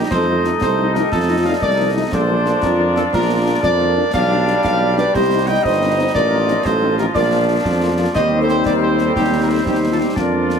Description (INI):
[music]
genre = military-style march for wind band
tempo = 119 BPM (dotted quarters)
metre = 6/8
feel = straight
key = Bb major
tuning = A4 = 440 Hz
[part]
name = mellow cornet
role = melody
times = 0.0-10.6 s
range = F4 to G5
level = -21 LUFS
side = left 2 dB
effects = none
[part]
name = clear woodwind section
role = second line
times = 0.0-10.6 s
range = F4 to Eb5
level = -24 LUFS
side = left 3 dB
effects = none
[part]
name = mellow hollow large flute ensemble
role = second line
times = 0.0-10.6 s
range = D4 to Eb5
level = -22 LUFS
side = right 2 dB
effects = none
[part]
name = clear trombone section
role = sustained chords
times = 0.0-10.6 s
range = F3 to Eb4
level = -23 LUFS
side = right 1 dB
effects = none
[part]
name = warm tuba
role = bass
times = 0.0-10.6 s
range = G1 to F2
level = -20 LUFS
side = right 3 dB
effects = none
[part]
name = concert snare drum, clash cymbals and concert bass drum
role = drums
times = 0.1-10.6 s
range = none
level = -27 LUFS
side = equal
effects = none
[part]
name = mellow French horn section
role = accompaniment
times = 0.3-10.6 s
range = F3 to F4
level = -23 LUFS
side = left 6 dB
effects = none
[sound]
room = moderate studio reverb, RT60 0.5 s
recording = heavily compressed radio sound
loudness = -14 LUFS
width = side -6 dB against mid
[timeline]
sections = 0.0-10.6 A section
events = none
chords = 0.1 F7; 2.1 Bb; 4.1 G7/B; 5.1 Cm; 6.1 F7/A; 7.2 Bb; 8.2 Cm/Eb